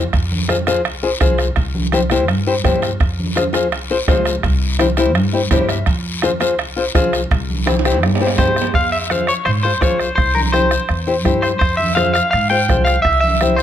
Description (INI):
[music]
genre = latin, cumbia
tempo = 167 BPM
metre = 4/4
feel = straight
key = F harmonic minor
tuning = A4 = 440 Hz
[part]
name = nylon-string guitar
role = accompaniment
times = 0.0-13.6 s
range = E4 to E5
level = -18 LUFS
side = left 4 dB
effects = none
[part]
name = upright bass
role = bass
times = 0.0-13.6 s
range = C2 to Ab2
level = -20 LUFS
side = equal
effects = none
[part]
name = bombo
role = percussion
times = 0.1-13.6 s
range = none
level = -20 LUFS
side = right 2 dB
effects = none
[part]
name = guiro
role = percussion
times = 0.1-13.6 s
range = none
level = -28 LUFS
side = left 5 dB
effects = none
[part]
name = timbales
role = percussion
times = 0.1-8.7 s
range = none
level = -27 LUFS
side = right 6 dB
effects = none
[part]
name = congas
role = percussion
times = 0.3-13.6 s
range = none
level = -26 LUFS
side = right 1 dB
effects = none
[part]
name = clean electric guitar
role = melody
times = 8.4-13.6 s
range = Bb4 to G5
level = -17 LUFS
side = left 1 dB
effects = spring reverb, slapback echo
[sound]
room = light reverb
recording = close, detailed microphones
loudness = -14 LUFS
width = side -10 dB against mid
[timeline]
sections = 0.0-8.7 A section; 8.7-13.6 B section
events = nylon-string guitar fill 5.3-5.9; drum fill 7.7-8.7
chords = 0.1 Fm; 1.6 C; 3.0 Fm; 4.4 C; 5.9 Fm; 7.3 C; 8.7 Fm; 10.2 C; 11.6 Fm; 13.1 C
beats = | 0.14 0.50 0.86 1.22 | 1.57 1.93 2.29 2.65 | 3.01 3.37 3.73 4.08 | 4.44 4.80 5.16 5.52 | 5.88 6.24 6.59 6.95 | 7.31 7.67 8.03 8.39 | 8.75 9.11 9.46 9.82 | 10.18 10.54 10.90 11.26 | 11.62 11.98 12.34 12.70 | 13.06 13.42